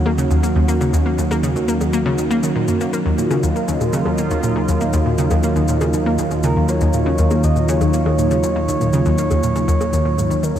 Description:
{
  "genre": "ambient, sequencer-driven space music",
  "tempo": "120 BPM",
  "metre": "4/4",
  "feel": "straight",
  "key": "Eb minor",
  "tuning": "A4 = 436 Hz",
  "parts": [
    { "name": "sweeping resonant pad", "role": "sustained chords", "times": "0.0-10.6 s", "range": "Eb3 to Gb4", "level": "-20 LUFS", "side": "right 1 dB", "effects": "chorus" },
    { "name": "analog pluck", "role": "riff", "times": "0.0-10.6 s", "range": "Eb2 to Bb3", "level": "-19 LUFS", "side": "left 1 dB", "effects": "chorus, vintage 12-bit sampler grit, analog delay" },
    { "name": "analog drone", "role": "bass", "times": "0.0-10.6 s", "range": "Eb2", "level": "-23 LUFS", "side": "equal", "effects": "chorus" },
    { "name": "bongos and cabasa", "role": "percussion", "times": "0.1-10.6 s", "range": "none", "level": "-31 LUFS", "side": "left 2 dB", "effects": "analog delay" },
    { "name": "expressive synth lead", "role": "melody", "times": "6.4-10.6 s", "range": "Bb4 to Eb5", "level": "-23 LUFS", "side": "right 1 dB", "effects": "chorus, analog delay" }
  ],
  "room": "moderate huge ambient reverb, RT60 8.0 s",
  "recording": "dreamy mix soaked in reverb",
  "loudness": "-15 LUFS",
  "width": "side -10 dB against mid",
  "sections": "0.0-10.6 A section",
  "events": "none",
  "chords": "0.0 Ebm7"
}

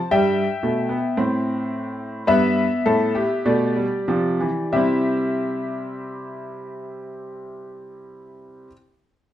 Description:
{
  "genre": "classical, baroque-style 4-part fugue for grand piano",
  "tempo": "46-59 BPM",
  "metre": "4/4",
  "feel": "straight",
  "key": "C major",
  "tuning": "A4 = 439 Hz",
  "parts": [
    { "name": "warm concert grand piano", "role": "solo", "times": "0.0-8.7 s", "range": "G2 to A5", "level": "-20 LUFS", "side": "equal", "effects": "none" }
  ],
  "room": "light reverb",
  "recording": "none",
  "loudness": "-19 LUFS",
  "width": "side -11 dB against mid",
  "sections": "0.0-4.7 A section; 4.7-9.3 B section",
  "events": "slowing down 0.0-4.7",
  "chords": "0.1 C/G; 2.3 G7; 4.7 C"
}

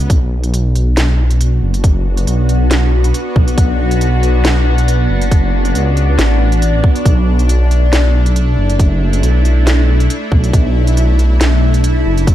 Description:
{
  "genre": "deep dubstep",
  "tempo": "138 BPM",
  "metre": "4/4",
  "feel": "swing 54% on 16ths, half-time",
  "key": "B minor",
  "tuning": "A4 = 436 Hz",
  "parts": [
    { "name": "dark detuned saw bass", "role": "bass", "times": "0.0-12.3 s", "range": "F#1 to C#2", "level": "-12 LUFS", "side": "equal", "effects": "none" },
    { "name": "garage drum kit", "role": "drums", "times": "0.0-12.3 s", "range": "hi-hat, snare drum", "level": "-20 LUFS", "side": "equal", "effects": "none" },
    { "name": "bowed-like drone", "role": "sustained chords", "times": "0.8-12.3 s", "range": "A3 to F#4", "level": "-18 LUFS", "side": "left 1 dB", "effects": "built-in reverb, phaser" },
    { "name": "electronic kick drum", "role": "drums", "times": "0.1-12.3 s", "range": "none", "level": "-12 LUFS", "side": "equal", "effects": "none" }
  ],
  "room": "little or no reverb",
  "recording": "dark, warm production, faint mains hum",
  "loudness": "-10 LUFS",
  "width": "side -13 dB against mid",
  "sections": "0.0-12.3 A section",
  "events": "none",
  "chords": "0.0 Bm"
}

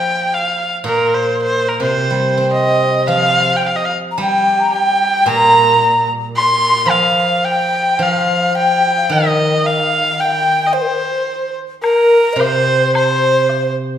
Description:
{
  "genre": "chinese traditional, Chinese chamber ensemble",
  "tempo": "110 BPM",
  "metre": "2/4",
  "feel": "rubato",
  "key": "C yu mode",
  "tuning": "A4 = 440 Hz",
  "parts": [
    { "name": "rich erhu", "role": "melody", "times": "0.0-13.7 s", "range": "Bb4 to C6", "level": "-15 LUFS", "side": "right 1 dB", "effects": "none" },
    { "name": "steel-string zither", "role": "accompaniment", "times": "0.0-14.0 s", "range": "Bb2 to C4", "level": "-18 LUFS", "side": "right 1 dB", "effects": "none" },
    { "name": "breathy alto ocarina", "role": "second line", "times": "2.5-13.7 s", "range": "Bb4 to C6", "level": "-16 LUFS", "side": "left 1 dB", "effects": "none" },
    { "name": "woodblock", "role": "percussion", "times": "11.8-13.6 s", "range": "none", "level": "-27 LUFS", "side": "left 3 dB", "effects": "none" }
  ],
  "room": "wet recital hall reverb, RT60 1.4 s",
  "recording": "recorded in a church or concert hall",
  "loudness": "-12 LUFS",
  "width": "side -10 dB against mid",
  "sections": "0.0-3.1 A section; 3.1-11.8 B section; 11.8-14.0 A section",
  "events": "none",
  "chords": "none"
}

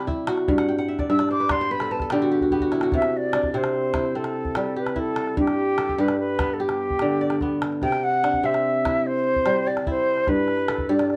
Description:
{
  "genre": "west african traditional, West African string and xylophone music",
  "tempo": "98 BPM (dotted quarters)",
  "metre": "12/8",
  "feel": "straight",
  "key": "C lydian",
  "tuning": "A4 = 439 Hz",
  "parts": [
    { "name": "concert flute", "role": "melody", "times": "0.0-11.2 s", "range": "G4 to E6", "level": "-26 LUFS", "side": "equal", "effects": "none" },
    { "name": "kora", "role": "arpeggios", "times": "0.0-11.2 s", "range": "G2 to G5", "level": "-26 LUFS", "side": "equal", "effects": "none" },
    { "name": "calabash", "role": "percussion", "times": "0.1-11.2 s", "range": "none", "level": "-32 LUFS", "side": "equal", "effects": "none" }
  ],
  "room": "light reverb",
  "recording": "none",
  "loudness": "-23 LUFS",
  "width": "mono",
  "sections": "0.0-2.9 A section; 2.9-11.2 B section",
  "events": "flute solo 0.0-2.9; kora fill 0.6-2.9; drum fill 2.4-2.9",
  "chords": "0.5 G; 2.9 C; 5.4 G; 7.8 C; 10.3 G"
}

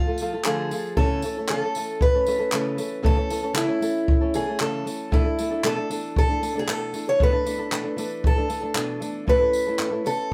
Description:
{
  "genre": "acoustic pop",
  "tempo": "116 BPM",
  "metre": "4/4",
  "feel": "straight",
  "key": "A major",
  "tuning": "A4 = 441 Hz",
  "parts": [
    { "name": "picked acoustic archtop guitar", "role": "melody", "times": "0.0-10.3 s", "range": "E4 to C#5", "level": "-27 LUFS", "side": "equal", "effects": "none" },
    { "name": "flamenco guitar", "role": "accompaniment", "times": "0.0-10.3 s", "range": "A2 to A4", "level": "-30 LUFS", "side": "equal", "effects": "none" },
    { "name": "jazz brush drum kit", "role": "drums", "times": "0.2-10.2 s", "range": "handclaps, kick drum, tambourine", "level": "-26 LUFS", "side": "equal", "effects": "none" }
  ],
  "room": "moderate studio reverb, RT60 0.6 s",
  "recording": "band playing live in one room",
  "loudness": "-24 LUFS",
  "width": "mono",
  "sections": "0.0-9.3 A section; 9.3-10.3 B section",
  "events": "none",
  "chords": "0.0 Dm; 1.0 A/C#; 5.1 E7sus4/B; 9.3 A"
}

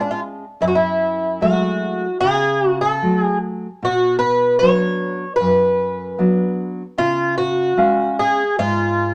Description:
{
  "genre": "fado-style ballad",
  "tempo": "75 BPM",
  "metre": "4/4",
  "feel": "rubato",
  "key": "F# minor",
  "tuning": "A4 = 435 Hz",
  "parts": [
    { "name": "fingerpicked twelve-string acoustic guitar", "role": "melody", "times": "0.0-9.1 s", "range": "D4 to C#5", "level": "-20 LUFS", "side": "equal", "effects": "none" },
    { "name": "nylon-string guitar", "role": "accompaniment", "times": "0.0-9.1 s", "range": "F#2 to E#5", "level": "-23 LUFS", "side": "equal", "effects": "none" }
  ],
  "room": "light reverb",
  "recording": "none",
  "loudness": "-18 LUFS",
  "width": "mono",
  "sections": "0.0-9.1 A section",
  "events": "none",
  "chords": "0.0 C#; 0.6 F#madd9; 3.8 Bm; 7.0 C#"
}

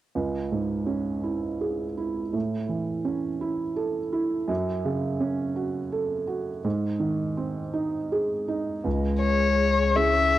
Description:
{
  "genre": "neoclassical piano and strings",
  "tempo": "55 BPM (dotted quarters)",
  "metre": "6/8",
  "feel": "rubato",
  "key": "C# minor",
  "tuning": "A4 = 440 Hz",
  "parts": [
    { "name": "felt-muted upright piano", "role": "accompaniment", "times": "0.2-10.4 s", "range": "C#2 to A4", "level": "-26 LUFS", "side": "right 3 dB", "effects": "cassette tape" },
    { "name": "warm cello", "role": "second line", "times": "8.8-10.4 s", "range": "G#3 to C#4", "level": "-29 LUFS", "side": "right 2 dB", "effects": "cassette tape" },
    { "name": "ethereal airy pad", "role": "sustained chords", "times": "9.3-10.4 s", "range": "C#4 to C#5", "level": "-34 LUFS", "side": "left 1 dB", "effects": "ensemble chorus, built-in reverb, cassette tape" },
    { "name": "warm sub bass", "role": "bass", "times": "8.9-10.4 s", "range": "C#2", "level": "-26 LUFS", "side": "left 2 dB", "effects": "tube saturation" },
    { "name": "dark violin", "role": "melody", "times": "9.2-10.4 s", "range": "C#5 to E5", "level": "-21 LUFS", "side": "left 5 dB", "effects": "none" }
  ],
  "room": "moderate spring reverb, RT60 2.1 s",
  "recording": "home recording on cassette",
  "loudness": "-24 LUFS",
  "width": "side -14 dB against mid",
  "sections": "0.2-8.9 A section; 8.9-10.4 B section",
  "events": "none",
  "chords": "0.2 C#m; 2.3 A; 4.5 F#m; 6.6 G#; 8.9 C#m"
}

